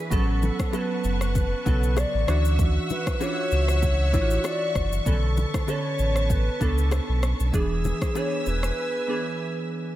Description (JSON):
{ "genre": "afrobeats", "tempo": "97 BPM", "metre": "4/4", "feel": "swing 55% on 16ths", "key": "A major", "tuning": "A4 = 440 Hz", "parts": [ { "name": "glassy digital keys", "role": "accompaniment", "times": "0.0-10.0 s", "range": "C#3 to A4", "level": "-30 LUFS", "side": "right 2 dB", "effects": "chorus" }, { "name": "warm studio string section", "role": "sustained chords", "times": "0.0-10.0 s", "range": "B4 to E6", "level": "-33 LUFS", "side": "equal", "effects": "none" }, { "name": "sub bass with octave", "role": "bass", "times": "0.1-8.7 s", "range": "E1 to D2", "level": "-23 LUFS", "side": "equal", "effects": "none" }, { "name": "afro-pop drum kit", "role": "drums", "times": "0.1-8.8 s", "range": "kick drum, rim click, shaker", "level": "-28 LUFS", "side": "equal", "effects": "none" }, { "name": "congas and bongos", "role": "percussion", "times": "0.1-8.6 s", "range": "none", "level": "-36 LUFS", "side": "left 5 dB", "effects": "none" }, { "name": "hollow clarinet-like synth lead", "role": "melody", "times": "0.4-9.7 s", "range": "G#4 to D5", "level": "-30 LUFS", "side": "left 1 dB", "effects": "chorus, tape echo" } ], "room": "light reverb", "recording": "none", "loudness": "-22 LUFS", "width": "side -14 dB against mid", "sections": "0.0-10.0 A section", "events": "break 8.8-10.0", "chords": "0.1 A69; 2.3 Dmaj9; 5.1 Bm9; 7.5 E7" }